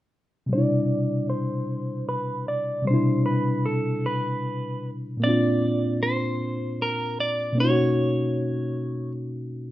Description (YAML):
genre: R&B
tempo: 51 BPM (dotted quarters)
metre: 6/8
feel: straight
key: unclear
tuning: A4 = 440 Hz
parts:
  - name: clean electric guitar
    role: melody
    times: 0.5-9.1 s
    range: A4 to D5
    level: -28 LUFS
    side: right 1 dB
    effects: low-pass filter, slapback echo, plate reverb
  - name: reed electric piano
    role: accompaniment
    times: 0.5-9.7 s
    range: Bb2 to F#4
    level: -24 LUFS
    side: equal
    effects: low-pass filter, plate reverb
room: moderate studio reverb, RT60 0.6 s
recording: rough home demo mix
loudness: -22 LUFS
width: side -15 dB against mid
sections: 0.5-9.7 A section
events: filter sweep 0.5-9.7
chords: 0.5 Cmaj9; 5.2 Bbadd9; 7.6 Bmaj9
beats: | 0.51 1.69 | 2.87 4.04 | 5.22 6.40 | 7.57 8.75